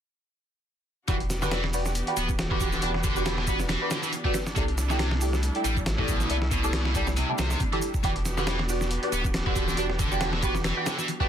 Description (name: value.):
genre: breakbeat, breaks.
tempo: 138 BPM.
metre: 4/4.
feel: swing 56% on 16ths.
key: E minor.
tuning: A4 = 437 Hz.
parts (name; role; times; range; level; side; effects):
clear studio string section; sustained chords; 1.1-11.3 s; E3 to G4; -34 LUFS; right 1 dB; sidechain pumping.
high-gain distorted guitar; riff; 1.1-11.3 s; B2 to D4; -30 LUFS; equal; distortion, vintage 12-bit sampler grit, ping-pong delay.
band-passed chord stab; stabs; 1.1-11.3 s; E4 to D5; -32 LUFS; right 2 dB; phaser, wide subtle chorus, ping-pong delay.
saturated sub bass; bass; 1.1-10.7 s; D1 to C2; -29 LUFS; equal; none.
dusty soul sampler-style drum kit; drums; 1.1-11.3 s; hi-hat, kick drum, snare drum; -29 LUFS; equal; small room ambience.
shaker; drums; 1.1-11.2 s; none; -39 LUFS; right 5 dB; small room ambience.
room: light reverb.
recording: dense, heavily limited modern master.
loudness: -24 LUFS.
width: side -9 dB against mid.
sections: 1.1-11.3 A section.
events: filter sweep on synth stab 1.1-11.3.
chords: 1.1 Em7; 4.6 C6; 8.0 Em7.